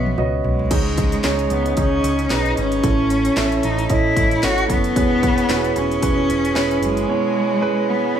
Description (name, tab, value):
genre	piano-driven pop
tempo	113 BPM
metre	4/4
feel	swing 56% on 16ths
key	unclear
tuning	A4 = 440 Hz
part	rich cello	melody	0.0-8.2 s	G#3 to F#4	-21 LUFS	left 2 dB	digital delay
part	warm concert grand piano	accompaniment	0.0-8.2 s	G#2 to E5	-21 LUFS	right 4 dB	none
part	deep dub picked electric bass	bass	0.0-7.0 s	E1 to C#2	-24 LUFS	equal	none
part	house drum kit	drums	0.1-7.1 s	crash cymbal, hi-hat, kick drum, snare drum, toms	-23 LUFS	equal	none
part	dark chamber string section	sustained chords	0.7-8.2 s	C#3 to G#4	-30 LUFS	left 2 dB	none
room	light reverb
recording	studio ambience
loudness	-16 LUFS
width	side -9 dB against mid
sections	0.7-8.2 A section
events	drum fill 0.0-0.7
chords	0.0 Bsus2; 0.7 C#sus2; 2.8 A; 5.0 E6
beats	0.18 | 0.71 1.24 1.77 2.31 | 2.84 3.37 3.90 4.43 | 4.96 5.49 6.03 6.56 | 7.09 7.62 8.15